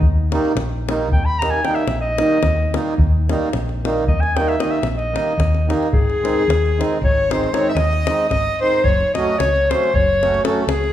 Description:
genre	balkan folk, Balkan wedding band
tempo	224 BPM (eighths)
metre	11/8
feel	straight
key	Eb major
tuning	A4 = 440 Hz
part	clear clarinet	melody	0.0-10.9 s	G#4 to Cb6	-20 LUFS	left 1 dB	none
part	hollow-body short-scale fingered electric bass	bass	0.0-10.9 s	F#1 to Eb2	-21 LUFS	equal	none
part	davul	percussion	0.0-10.9 s	none	-23 LUFS	left 2 dB	none
part	accordion	accompaniment	0.3-10.6 s	Eb3 to F#4	-22 LUFS	right 2 dB	none
part	clear violin	second line	6.0-10.9 s	G#4 to E5	-27 LUFS	left 1 dB	none
room	moderate recital hall reverb, RT60 1.5 s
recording	recorded in a church or concert hall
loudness	-16 LUFS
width	side -12 dB against mid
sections	0.0-5.9 A section; 5.9-10.9 B section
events	clarinet solo 0.0-5.9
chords	0.0 Eb; 5.9 G#; 8.9 F#m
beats	| 0.02 0.29 0.56 0.83 1.10 1.37 1.64 1.91 2.17 2.44 2.71 | 2.98 3.25 3.52 3.79 4.05 4.32 4.59 4.86 5.12 5.39 5.66 | 5.93 6.19 6.46 6.73 6.99 7.26 7.53 7.79 8.06 8.32 8.59 | 8.85 9.12 9.38 9.65 9.91 10.18 10.44 10.71

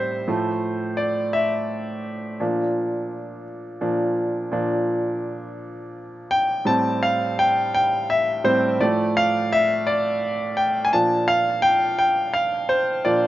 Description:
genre	pop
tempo	56 BPM (dotted quarters)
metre	6/8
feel	straight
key	D minor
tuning	A4 = 438 Hz
part	clear concert grand piano	solo	0.0-13.3 s	A2 to A5	-20 LUFS	equal	slapback echo
room	little or no reverb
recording	recorded outdoors, with no room sound, nothing above 7.5 kHz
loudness	-19 LUFS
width	side -14 dB against mid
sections	0.0-6.7 A section; 6.7-13.3 B section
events	grand piano solo 0.0-6.7, 6.7-13.3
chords	0.3 Dm9/A; 2.4 Bb; 6.7 Am7; 8.8 Dm/A; 10.9 Bb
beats	| 0.27 1.34 | 2.40 3.46 | 4.53 5.60 | 6.67 7.74 | 8.80 9.86 | 10.92 11.98 | 13.04

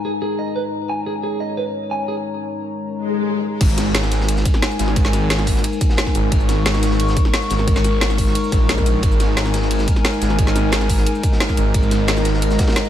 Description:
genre	dark technical drum and bass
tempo	177 BPM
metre	4/4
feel	straight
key	unclear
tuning	A4 = 440 Hz
part	dark analog pad	sustained chords	0.0-12.9 s	G#3 to C#6	-22 LUFS	left 2 dB	lush chorus, sidechain pumping
part	electric guitar at the edge of break-up	arpeggios	0.0-2.1 s	G#4 to G#5	-24 LUFS	right 2 dB	sidechain pumping, ping-pong delay
part	swell	sound effects	3.0-3.6 s	none	-22 LUFS	left 5 dB	none
part	wide detuned saw bass	bass	3.6-12.6 s	G#1 to A#1	-19 LUFS	equal	chorus, tube saturation, sidechain pumping
part	crunchy breakbeat drum kit	drums	3.6-12.8 s	ride cymbal, snare drum	-30 LUFS	equal	high-pass filter on cymbals, studio ambience, high-pass filter on snare, high-pass filter on room
part	drum and bass drum kit	drums	3.6-12.9 s	crash cymbal, hi-hat, shaker, snare drum	-23 LUFS	equal	overdrive, low-pass filter on hats, studio ambience, low-pass filter on cymbals, low-pass filter on perc, low-pass filter on snare
part	electronic kick drum	drums	3.6-12.7 s	none	-18 LUFS	equal	studio ambience
room	light reverb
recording	none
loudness	-16 LUFS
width	side -11 dB against mid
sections	0.0-3.6 A section; 3.6-12.9 B section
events	swell 3.0-3.6; drop 3.6-12.9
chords	0.0 G#5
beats	0.22 0.56 | 0.90 1.24 1.57 1.91 | 2.25 2.59 2.93 3.27 | 3.61 3.95 4.29 4.62 | 4.96 5.30 5.64 5.98 | 6.32 6.66 7.00 7.34 | 7.67 8.01 8.35 8.69 | 9.03 9.37 9.71 10.05 | 10.39 10.73 11.06 11.40 | 11.74 12.08 12.42 12.76

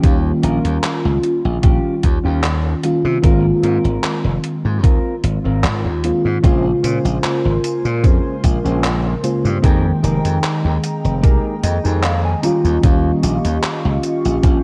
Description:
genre	vaporwave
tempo	75 BPM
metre	4/4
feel	swing 54% on 16ths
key	unclear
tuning	A4 = 440 Hz
part	FM electric piano with soft pad layer	accompaniment	0.0-14.6 s	Db3 to G5	-22 LUFS	equal	tremolo, lush chorus, tape echo
part	mellow electric guitar	riff	0.0-14.6 s	C4 to Bb5	-28 LUFS	equal	analog chorus, low-pass filter, tape echo
part	slap bass	bass	0.0-14.6 s	F1 to C3	-21 LUFS	equal	tube saturation
part	detuned 8-bit digital drum machine	drums	0.0-14.6 s	handclaps, hi-hat, tambourine	-27 LUFS	equal	vintage 12-bit sampler grit, gated reverb
part	electronic kick drum	drums	0.0-14.6 s	none	-16 LUFS	equal	overdrive, vintage 12-bit sampler grit
part	warbly tape-like pad	sustained chords	7.2-14.6 s	Ab3 to Db6	-31 LUFS	equal	chorus, built-in reverb, vintage 12-bit sampler grit
room	light reverb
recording	cassette tape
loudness	-17 LUFS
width	mono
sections	0.0-14.6 A section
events	filter sweep on clean electric guitar 0.0-14.6; clean electric guitar fill 11.2-12.8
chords	0.0 Eb9; 3.2 Ab69; 6.4 Bbm9; 9.6 Fm11; 12.4 Eb9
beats	| 0.04 0.84 1.64 2.44 | 3.24 4.04 4.84 5.64 | 6.44 7.24 8.04 8.84 | 9.64 10.44 11.24 12.04 | 12.84 13.64 14.44

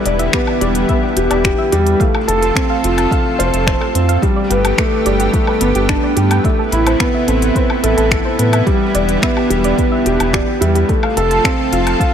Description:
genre	piano and strings electronica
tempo	108 BPM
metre	4/4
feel	straight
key	unclear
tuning	A4 = 440 Hz
part	lush unison pad	sustained chords	0.0-12.1 s	C3 to A4	-21 LUFS	equal	chorus, sidechain pumping
part	felt-muted upright piano	riff	0.1-12.1 s	G3 to F5	-16 LUFS	equal	digital delay
part	round analog bass	bass	0.1-11.9 s	E1 to A2	-18 LUFS	equal	sidechain pumping
part	organic electronic drum kit	drums	0.1-12.1 s	finger snaps, hi-hat, woodblock	-22 LUFS	left 2 dB	none
part	soft round pluck	arpeggios	0.2-12.1 s	G4 to A5	-23 LUFS	right 1 dB	chorus, sidechain pumping, digital delay
part	electronic kick drum	drums	0.3-12.1 s	none	-18 LUFS	equal	none
room	light reverb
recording	none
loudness	-12 LUFS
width	side -8 dB against mid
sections	0.0-12.1 A section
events	none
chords	0.0 Em7; 2.0 F; 4.2 Gadd9; 6.4 Amadd9; 8.7 Em7; 10.9 F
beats	0.33 0.89 1.45 | 2.00 2.56 3.11 3.67 | 4.22 4.78 5.33 5.89 | 6.45 7.00 7.56 8.11 | 8.67 9.22 9.78 10.33 | 10.89 11.45 12.00

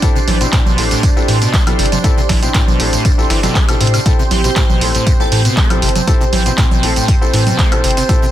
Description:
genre	acid house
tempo	119 BPM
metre	4/4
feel	straight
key	A minor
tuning	A4 = 438 Hz
part	warm analog pad	sustained chords	0.0-8.3 s	C4 to D5	-23 LUFS	right 2 dB	chorus, sidechain pumping
part	acid bass, saw	riff	0.0-8.3 s	A1 to A3	-20 LUFS	equal	tube saturation, analog chorus, sidechain pumping, ping-pong delay
part	warm baby grand piano	stabs	0.0-8.2 s	C4 to C5	-23 LUFS	left 6 dB	vintage 12-bit sampler grit, ping-pong delay
part	dusty soul sampler-style drum kit	drums	0.0-8.2 s	hi-hat, snare drum, tambourine	-26 LUFS	right 1 dB	none
part	electronic kick drum	drums	0.0-8.2 s	none	-14 LUFS	equal	none
part	punchy analog drum machine	drums	0.0-8.3 s	congas, handclaps, hi-hat, tambourine, woodblock	-19 LUFS	right 3 dB	none
part	airy breathy pad	texture	0.0-8.3 s	G4 to C6	-24 LUFS	right 3 dB	chorus, phaser, sidechain pumping
part	round analog bass	bass	0.3-8.0 s	G1 to A2	-17 LUFS	equal	sidechain pumping
part	airy dreamy lead	melody	4.3-5.4 s	G4 to A4	-25 LUFS	right 4 dB	chorus, tape echo
room	little or no reverb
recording	dense, heavily limited modern master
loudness	-11 LUFS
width	side -12 dB against mid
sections	0.0-8.3 A section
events	none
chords	0.0 Am7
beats	| 0.02 0.53 1.03 1.54 | 2.04 2.54 3.05 3.55 | 4.06 4.56 5.07 5.57 | 6.07 6.58 7.08 7.59 | 8.09

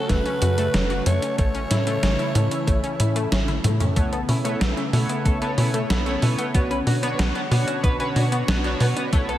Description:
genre	synthwave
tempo	93 BPM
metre	4/4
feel	straight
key	B minor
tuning	A4 = 440 Hz
part	growling alto saxophone	melody	0.0-3.3 s	A4 to C#5	-27 LUFS	right 1 dB	digital delay
part	analog string pad	sustained chords	0.0-9.4 s	C#3 to C#5	-29 LUFS	equal	ensemble chorus, sidechain pumping
part	analog pluck	arpeggios	0.0-9.4 s	A3 to F#4	-29 LUFS	left 3 dB	chorus, cassette tape, tape echo
part	tight sequencer bass	bass	0.1-9.4 s	F#1 to B2	-23 LUFS	equal	sidechain pumping
part	electronic kick drum	drums	0.1-9.3 s	none	-22 LUFS	equal	none
part	gated 80s digital drum machine	drums	0.1-9.4 s	hi-hat, snare drum, toms	-27 LUFS	right 1 dB	gated reverb, gated reverb snare
part	semi-hollow electric guitar	riff	4.0-9.4 s	A3 to B4	-31 LUFS	equal	lush chorus, low-pass filter, tape echo
part	chorused polysynth	stabs	4.0-9.3 s	B2 to C#5	-29 LUFS	right 1 dB	cassette tape, tape echo
room	light reverb, digital ambience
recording	none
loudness	-19 LUFS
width	side -13 dB against mid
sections	0.0-4.0 A section; 4.0-9.4 B section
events	drum fill 3.5-4.0; filter sweep on clean electric guitar 4.0-9.4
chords	0.0 F#m; 1.4 A; 4.0 Aadd9/B; 6.5 Bmadd9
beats	0.09 0.74 | 1.39 2.03 2.67 3.32 | 3.96 4.61 5.25 5.90 | 6.55 7.19 7.84 8.48 | 9.13

